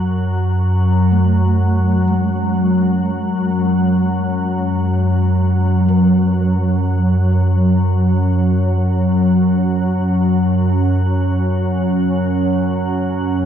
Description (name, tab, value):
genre	dark ambient drone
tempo	free time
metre	none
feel	none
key	unclear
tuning	A4 = 438 Hz
part	gamelan-type bronze metallophone	arpeggios	0.0-11.6 s	F#3 to F#4	-25 LUFS	right 4 dB	diffuse ambient delay
part	organ-like drone	drone	0.0-13.5 s	F#2 to F#3	-14 LUFS	equal	ensemble chorus, built-in reverb
part	quartz singing bowl	texture	0.0-1.1 s	F#3 to F#4	-33 LUFS	left 1 dB	none
part	deep dark ambient pad	sustained chords	3.0-13.5 s	C#4 to C#5	-26 LUFS	right 5 dB	chorus, built-in reverb
room	wet cathedral reverb, RT60 6.2 s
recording	dark, warm production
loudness	-14 LUFS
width	side -9 dB against mid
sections	0.0-1.1 A section; 1.1-13.5 B section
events	filter sweep on synth drone 0.0-1.1; fade-in on ambient pad 1.1-13.5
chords	0.0 N.C.; 1.1 F#5